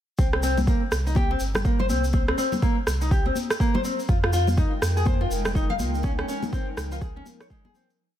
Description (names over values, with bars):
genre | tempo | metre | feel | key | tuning
afro house | 123 BPM | 4/4 | swing 60% on 16ths | C phrygian | A4 = 442 Hz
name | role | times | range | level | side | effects
nylon-string guitar | arpeggios | 0.2-7.9 s | Ab3 to F5 | -28 LUFS | left 1 dB | sidechain pumping, ping-pong delay
warm sub bass | bass | 0.2-7.2 s | F1 to F2 | -26 LUFS | equal | tube saturation, sidechain pumping
electronic kick drum | drums | 0.2-7.6 s | none | -23 LUFS | equal | overdrive
congas | percussion | 0.2-7.7 s | none | -32 LUFS | left 4 dB | none
tube shaker | percussion | 0.2-8.0 s | none | -38 LUFS | left 3 dB | none
electronic rim click | drums | 0.3-7.5 s | none | -30 LUFS | right 2 dB | overdrive
ethereal airy pad | sustained chords | 4.4-8.0 s | F3 to G5 | -34 LUFS | equal | ensemble chorus, built-in reverb, sidechain pumping
room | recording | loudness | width
small room ambience | none | -21 LUFS | side -11 dB against mid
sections
0.2-8.0 groove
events
fade-out 5.4-8.0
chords
0.2 C7(no3); 4.1 Fm11; 6.0 Db69